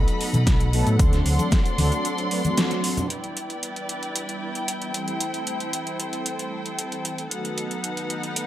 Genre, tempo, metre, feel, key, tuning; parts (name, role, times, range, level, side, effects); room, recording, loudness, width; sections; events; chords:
nu-disco, nu disco; 114 BPM; 4/4; straight; E minor; A4 = 436 Hz
mellow synth brass; accompaniment; 0.0-8.5 s; D#3 to B4; -29 LUFS; equal; chorus, sidechain pumping, slapback echo
dark studio string section; sustained chords; 0.0-8.5 s; D#4 to C6; -29 LUFS; left 1 dB; sidechain pumping
picked electric bass; bass; 0.0-1.9 s; B1 to B2; -21 LUFS; equal
pop drum kit; drums; 0.1-8.5 s; hi-hat, snare drum; -28 LUFS; right 1 dB; overdrive
cabasa and congas; percussion; 0.1-3.1 s; -30 LUFS; left 2 dB
electronic kick drum; drums; 0.5-1.6 s; -20 LUFS; equal; overdrive
light reverb; -22 LUFS; side -13 dB against mid
0.0-3.1 A section; 3.1-8.5 B section
break 2.0-3.1; band accent 2.6; filter sweep on analog polysynth 3.1-8.5
0.0 B7; 1.0 D7; 3.1 Em7; 4.9 Am7; 7.3 B7